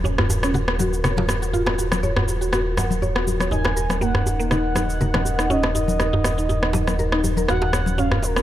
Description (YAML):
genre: afro house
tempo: 121 BPM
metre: 4/4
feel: swing 54% on 16ths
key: Eb minor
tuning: A4 = 440 Hz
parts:
  - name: dark analog pad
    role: sustained chords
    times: 0.0-8.4 s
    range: Db4 to Gb5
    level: -30 LUFS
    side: left 1 dB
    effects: chorus, phaser
  - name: mallet-like synth pluck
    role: arpeggios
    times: 0.0-8.4 s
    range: Bb3 to Gb5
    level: -27 LUFS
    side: right 1 dB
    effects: analog chorus, dub echo
  - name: round analog bass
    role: bass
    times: 0.0-8.4 s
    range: Eb1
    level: -25 LUFS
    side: equal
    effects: tube saturation
  - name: djembe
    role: percussion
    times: 0.0-8.3 s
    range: none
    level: -26 LUFS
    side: right 1 dB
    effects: none
  - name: electronic cabasa and rim click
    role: drums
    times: 0.1-8.4 s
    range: none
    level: -25 LUFS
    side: equal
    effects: none
  - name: congas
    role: percussion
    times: 0.5-8.0 s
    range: none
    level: -27 LUFS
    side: left 3 dB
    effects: none
  - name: expressive portamento lead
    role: melody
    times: 3.5-8.4 s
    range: Bb4 to Ab5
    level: -28 LUFS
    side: right 1 dB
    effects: lush chorus, dub echo
room: light reverb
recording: dark, warm production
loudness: -19 LUFS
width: side -13 dB against mid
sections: 0.0-8.4 A section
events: none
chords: 0.0 Gbmaj7/Eb; 3.5 Ebm; 7.5 Gbmaj7/Eb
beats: 0.05 0.54 1.04 | 1.53 2.03 2.53 3.02 | 3.52 4.01 4.51 5.01 | 5.50 6.00 6.49 6.99 | 7.49 7.98